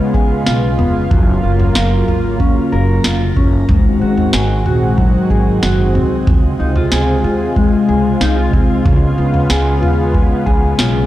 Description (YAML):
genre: dream pop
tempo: 93 BPM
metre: 4/4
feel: straight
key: Db major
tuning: A4 = 440 Hz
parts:
  - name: lush unison pad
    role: sustained chords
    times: 0.0-11.1 s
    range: C3 to Gb4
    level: -19 LUFS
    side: right 1 dB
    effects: chorus
  - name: mellow electric guitar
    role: arpeggios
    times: 0.0-11.1 s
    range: Ab2 to Bb4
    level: -17 LUFS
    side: left 2 dB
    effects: lush chorus, analog delay
  - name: upright bass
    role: bass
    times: 0.1-11.1 s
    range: F1 to Eb2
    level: -17 LUFS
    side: equal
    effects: none
  - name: booming analog drum machine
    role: drums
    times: 0.1-10.9 s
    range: kick drum, snare drum, toms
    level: -16 LUFS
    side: equal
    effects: none
room: little or no reverb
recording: dry, gritty hardware recording, transformer saturation, cassette tape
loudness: -11 LUFS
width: side -14 dB against mid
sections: 0.0-11.1 A section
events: none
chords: 0.0 Db7; 1.1 Gbmaj7; 3.7 Ab7; 6.3 Dbmaj7; 8.9 Db7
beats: 0.47 | 1.11 1.76 2.40 3.05 | 3.69 4.34 4.98 5.63 | 6.27 6.92 7.56 8.21 | 8.85 9.50 10.14 10.79